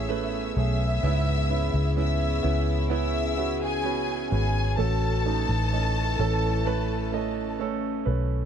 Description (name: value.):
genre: pop ballad.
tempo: 64 BPM.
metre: 4/4.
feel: straight.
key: unclear.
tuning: A4 = 441 Hz.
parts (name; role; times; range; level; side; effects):
warm symphonic violin section; melody; 0.0-7.6 s; G#4 to E6; -31 LUFS; left 2 dB; slapback echo.
dark French horn section; second line; 0.0-8.5 s; C#4 to G#4; -34 LUFS; left 14 dB; none.
warm grand piano; accompaniment; 0.0-8.5 s; G#2 to D#5; -30 LUFS; right 15 dB; none.
warm studio string section; sustained chords; 0.0-8.5 s; C#3 to G#4; -37 LUFS; left 3 dB; none.
vintage muted fingered electric bass; bass; 0.0-8.5 s; G#1 to C#2; -26 LUFS; left 1 dB; none.
room: small room ambience.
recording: dry, close 1970s-style studio recording.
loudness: -23 LUFS.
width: side -8 dB against mid.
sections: 0.0-8.5 A section.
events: none.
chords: 0.0 Amaj7; 1.0 C#m7; 4.8 A.